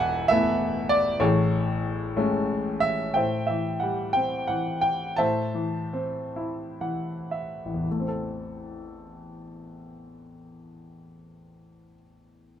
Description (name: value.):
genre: classical, lyrical solo piano.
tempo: 35-68 BPM (dotted quarters).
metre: 6/8.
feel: rubato.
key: A major, A dorian from 3.2 s.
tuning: A4 = 440 Hz.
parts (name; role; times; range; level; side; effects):
clear grand piano; solo; 0.0-12.6 s; E1 to A5; -24 LUFS; equal; none.
room: moderate studio reverb, RT60 0.8 s.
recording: none.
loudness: -24 LUFS.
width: side -9 dB against mid.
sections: 0.0-3.2 A section; 3.2-7.9 B section; 7.9-12.6 C section.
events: slowing down 3.2-7.9; grand piano fill 6.4-7.9.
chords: 0.0 Esus4; 1.2 Amaj7; 3.2 Am7; 5.2 Am.